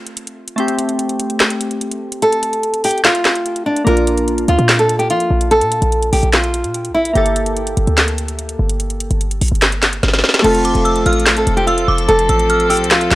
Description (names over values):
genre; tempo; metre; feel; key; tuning
hip hop, trap; 146 BPM; 4/4; half-time; F major; A4 = 440 Hz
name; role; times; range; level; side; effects
glassy digital keys; accompaniment; 0.0-13.2 s; A3 to A4; -22 LUFS; equal; chorus
trap drum kit; drums; 0.1-13.2 s; crash cymbal, handclaps, hi-hat, snare drum; -16 LUFS; equal; none
nylon-string guitar; melody; 2.2-7.1, 10.4-13.2 s; D4 to Bb4; -16 LUFS; equal; none
short 808-style bass; bass; 3.9-13.2 s; F1 to F3; -18 LUFS; equal; none
clear studio string section; sustained chords; 10.4-13.2 s; F3 to A4; -22 LUFS; left 1 dB; none
metallic FM bell; second line; 10.6-12.9 s; D6 to F6; -20 LUFS; right 1 dB; chorus, phaser, analog delay
room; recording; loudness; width
little or no reverb; dry, gritty hardware recording; -13 LUFS; side -17 dB against mid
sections
0.0-10.4 A section; 10.4-13.2 B section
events
break 0.0-3.9; drum fill 10.0-10.4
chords
0.0 F; 3.9 Bb; 7.2 Gmadd9; 10.4 F